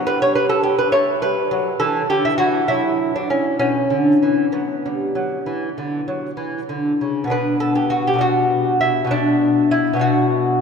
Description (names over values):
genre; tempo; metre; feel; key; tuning
classical, baroque-style dance for lute; 66 BPM (dotted quarters); 12/8; rubato; B minor; A4 = 440 Hz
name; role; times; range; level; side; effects
lute; solo; 0.0-10.6 s; B2 to C#5; -16 LUFS; equal; none
room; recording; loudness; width
wet cathedral reverb, RT60 4.8 s; recorded in a church or concert hall; -16 LUFS; side -6 dB against mid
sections
0.0-7.3 A section; 7.3-10.6 B section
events
none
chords
0.1 G; 1.8 Dadd9; 2.7 N.C.; 3.6 Bm